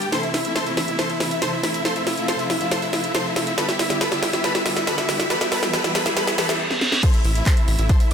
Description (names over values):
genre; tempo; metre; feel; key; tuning
uplifting trance; 139 BPM; 4/4; straight; A minor; A4 = 440 Hz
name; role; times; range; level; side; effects
big supersaw lead; melody; 0.0-8.1 s; E4 to C5; -25 LUFS; equal; sidechain pumping, ping-pong delay
plucky unison lead; second line; 0.0-8.1 s; E5 to C6; -30 LUFS; left 1 dB; wide subtle chorus, sidechain pumping, tape echo
dark chamber string section; sustained chords; 0.0-8.1 s; C3 to G4; -29 LUFS; equal; sidechain pumping
tight sequencer bass; bass; 0.0-8.1 s; E1 to A1; -28 LUFS; equal; none
techno drum kit; drums; 0.0-8.1 s; crash cymbal, handclaps, hi-hat, snare drum; -24 LUFS; equal; none
riser and reverse cymbal; sound effects; 0.0-7.0 s; none; -29 LUFS; right 1 dB; none
electronic kick drum; drums; 7.0-8.0 s; none; -17 LUFS; equal; none
room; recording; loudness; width
moderate lush hall reverb, RT60 2.2 s; none; -18 LUFS; side -7 dB against mid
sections
0.0-7.0 A section; 7.0-8.1 B section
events
build-up 0.0-7.0; drum fill 0.0-6.6, 6.7-7.0; reverse cymbal 6.2-7.0; drop 7.0-8.1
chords
0.1 Am; 1.9 F; 3.6 G; 5.3 Em; 7.0 Am